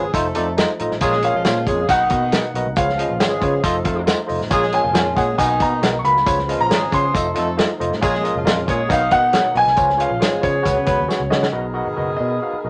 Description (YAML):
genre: uptempo 1960s-style soul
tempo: 137 BPM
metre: 4/4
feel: straight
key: unclear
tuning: A4 = 440 Hz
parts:
  - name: clear concert grand piano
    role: melody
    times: 0.0-12.7 s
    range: Db5 to Db6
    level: -22 LUFS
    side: equal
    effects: none
  - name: clear saxophone section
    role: second line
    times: 0.0-12.7 s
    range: Eb3 to Cb5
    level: -27 LUFS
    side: equal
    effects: none
  - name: barky tine electric piano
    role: accompaniment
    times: 0.0-12.7 s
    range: Bb2 to F5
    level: -25 LUFS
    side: equal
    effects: overdrive
  - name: percussive tonewheel organ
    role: sustained chords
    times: 0.0-12.7 s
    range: F3 to Bb4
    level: -32 LUFS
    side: equal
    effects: none
  - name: vintage muted picked electric bass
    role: bass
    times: 0.0-12.7 s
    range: F1 to Db3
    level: -29 LUFS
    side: equal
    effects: none
  - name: warm soul drum kit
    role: drums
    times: 0.1-11.5 s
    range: hi-hat, kick drum, snare drum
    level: -24 LUFS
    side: equal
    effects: none
  - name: tambourine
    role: percussion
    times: 0.1-11.2 s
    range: none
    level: -38 LUFS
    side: equal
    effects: none
room: moderate club reverb, RT60 0.7 s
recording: none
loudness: -18 LUFS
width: mono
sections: 0.0-11.5 A section; 11.5-12.7 B section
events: drum fill 11.1-11.5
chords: 0.1 F7; 1.0 Bbm7; 1.9 Cbmaj7; 2.8 Db7; 3.6 F7; 4.5 Bbm7; 5.4 Cbmaj7; 6.3 Db7; 7.1 F7; 8.0 Bbm7; 8.9 Cbmaj7; 9.8 Db7; 10.7 Db7sus4; 11.5 Cbmaj7